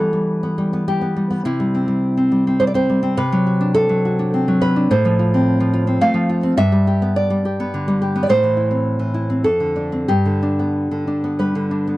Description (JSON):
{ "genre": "romantic piece for solo classical guitar", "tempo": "91-111 BPM", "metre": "3/4", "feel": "rubato", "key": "unclear", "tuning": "A4 = 439 Hz", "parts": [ { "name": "nylon-string guitar", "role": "solo", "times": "0.0-12.0 s", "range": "F2 to F5", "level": "-16 LUFS", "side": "equal", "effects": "none" } ], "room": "light reverb", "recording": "dry, close 1970s-style studio recording", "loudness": "-16 LUFS", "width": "side -17 dB against mid", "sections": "0.0-12.0 A section", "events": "none", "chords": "0.0 Em; 1.4 C; 3.2 D7/C; 4.9 F/A; 6.6 G; 8.3 Am; 9.5 Dm7/F; 10.1 G", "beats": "0.28 0.87 | 1.45 2.04 2.62 | 3.19 3.77 4.34 | 4.92 5.48 6.03 | 6.59 7.17 7.75 | 8.31 8.87 9.46 | 10.10 10.75 11.39" }